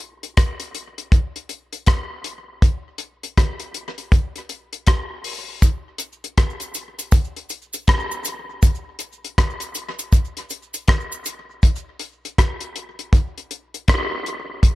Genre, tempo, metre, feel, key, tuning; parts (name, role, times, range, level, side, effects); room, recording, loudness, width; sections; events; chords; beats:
reggae; 80 BPM; 4/4; swing 63% on 16ths
damped 70s drum kit; drums; 0.2-14.8 s; hi-hat, kick drum, rim click; -18 LUFS; equal
cabasa; percussion; 5.6-11.5 s; -30 LUFS; right 3 dB; tape echo
light reverb; echo-heavy mix, faint mains hum; -19 LUFS; side -17 dB against mid
0.0-14.8 A section
break 0.0-5.6; part muted 11.6-14.8
0.37 1.12 1.87 | 2.62 3.37 4.12 4.87 | 5.62 6.38 7.12 7.88 | 8.63 9.38 10.13 10.88 | 11.63 12.38 13.13 13.88 | 14.63